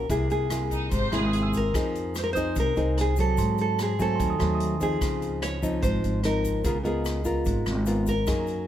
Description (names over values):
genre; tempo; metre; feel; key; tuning
bossa nova; 147 BPM; 4/4; straight; unclear; A4 = 440 Hz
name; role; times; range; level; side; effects
nylon-string guitar; melody; 0.0-8.7 s; G#4 to Db5; -29 LUFS; equal; none
nylon-string guitar; accompaniment; 0.0-8.7 s; Ab2 to Bb4; -29 LUFS; left 1 dB; none
tine electric piano; accompaniment; 0.0-8.3 s; Eb5 to E6; -38 LUFS; right 5 dB; none
upright bass; bass; 0.0-8.7 s; G#1 to Ab2; -28 LUFS; equal; none
swinging big-band drum kit; drums; 0.1-8.6 s; hi-hat, kick drum, rim click; -33 LUFS; equal; none
egg shaker; percussion; 0.1-8.7 s; none; -46 LUFS; left 6 dB; none
warm chamber violin section; second line; 0.7-1.4 s; D#4 to C5; -32 LUFS; left 1 dB; none
room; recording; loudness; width
light reverb; none; -23 LUFS; side -11 dB against mid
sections
0.0-8.7 A section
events
none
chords
0.1 C7alt; 1.7 Fm7; 3.4 Ab7b9; 5.0 Dbmaj9; 6.6 Db13